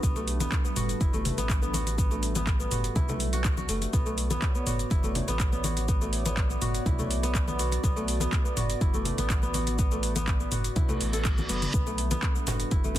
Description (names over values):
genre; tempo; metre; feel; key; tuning
afro house; 123 BPM; 4/4; straight; B minor; A4 = 440 Hz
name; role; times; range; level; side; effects
warm analog pad; sustained chords; 0.0-13.0 s; G3 to D5; -36 LUFS; right 1 dB; chorus, sidechain pumping
kora; arpeggios; 0.0-13.0 s; A3 to A4; -33 LUFS; equal; sidechain pumping, digital delay
warm sub bass; bass; 0.0-13.0 s; F#1 to B1; -31 LUFS; equal; tube saturation, sidechain pumping
afro-pop drum kit; drums; 0.0-13.0 s; cabasa, handclaps, hi-hat, toms; -33 LUFS; equal; none
electronic kick drum; drums; 0.0-12.8 s; none; -27 LUFS; equal; none
congas; percussion; 0.2-13.0 s; none; -36 LUFS; left 3 dB; none
reverse cymbal; sound effects; 10.9-11.7 s; none; -37 LUFS; right 2 dB; none
djembe; percussion; 12.5-13.0 s; none; -35 LUFS; right 3 dB; none
room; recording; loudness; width
digital ambience; dense, heavily limited modern master; -25 LUFS; side -13 dB against mid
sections
0.0-13.0 A section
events
reverse cymbal 10.9-11.7; drum fill 11.5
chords
0.0 G; 3.9 Bm7; 11.7 G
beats
| 0.03 0.52 1.01 1.50 | 1.98 2.47 2.96 3.45 | 3.93 4.42 4.91 5.40 | 5.88 6.37 6.86 7.35 | 7.84 8.32 8.81 9.30 | 9.79 10.28 10.76 11.25 | 11.74 12.23 12.71